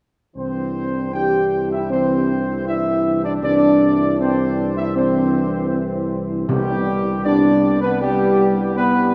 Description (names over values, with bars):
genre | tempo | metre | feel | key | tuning
classical | 79 BPM | 4/4 | straight | C major | A4 = 440 Hz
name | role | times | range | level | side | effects
clear trumpet section | melody | 0.4-9.1 s | G4 to G5 | -26 LUFS | equal | none
mellow French horn section | sustained chords | 0.4-9.1 s | G3 to G4 | -21 LUFS | equal | none
warm trombone section | sustained chords | 0.4-9.1 s | E3 to D4 | -28 LUFS | equal | none
mellow tuba | bass | 0.4-9.1 s | C2 | -26 LUFS | equal | none
timpani | percussion | 6.5-7.6 s | C3 | -31 LUFS | equal | none
room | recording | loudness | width
wet cathedral reverb, RT60 6.8 s | none | -19 LUFS | mono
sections
0.4-9.1 A section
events
none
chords
0.4 Cadd9; 6.5 G/C